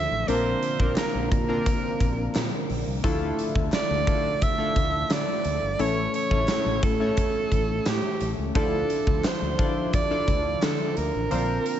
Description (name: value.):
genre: 1980s-style pop.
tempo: 87 BPM.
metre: 4/4.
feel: straight.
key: D minor.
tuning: A4 = 439 Hz.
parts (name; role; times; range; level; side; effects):
clear alto saxophone; melody; 0.0-11.8 s; G4 to E5; -27 LUFS; right 4 dB; none.
chorused retro synth keys; accompaniment; 0.0-11.8 s; A3 to D5; -30 LUFS; left 4 dB; none.
string machine, cellos; sustained chords; 0.0-11.8 s; D3 to E5; -34 LUFS; equal; ensemble chorus.
funky polysynth comp; stabs; 0.0-11.8 s; E3 to C5; -36 LUFS; left 2 dB; none.
fretless electric bass; bass; 0.0-11.6 s; G1 to D3; -30 LUFS; equal; none.
big rock drum kit; drums; 0.3-11.8 s; hi-hat, kick drum, snare drum, tambourine; -27 LUFS; equal; gated reverb.
group handclap; percussion; 1.0-10.8 s; none; -46 LUFS; left 5 dB; none.
room: small room ambience.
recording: nothing above 7.9 kHz.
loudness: -22 LUFS.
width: side -10 dB against mid.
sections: 0.0-11.8 A section.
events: none.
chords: 0.3 Bbadd9; 3.0 Dmadd9; 5.8 A; 8.6 Dmadd9.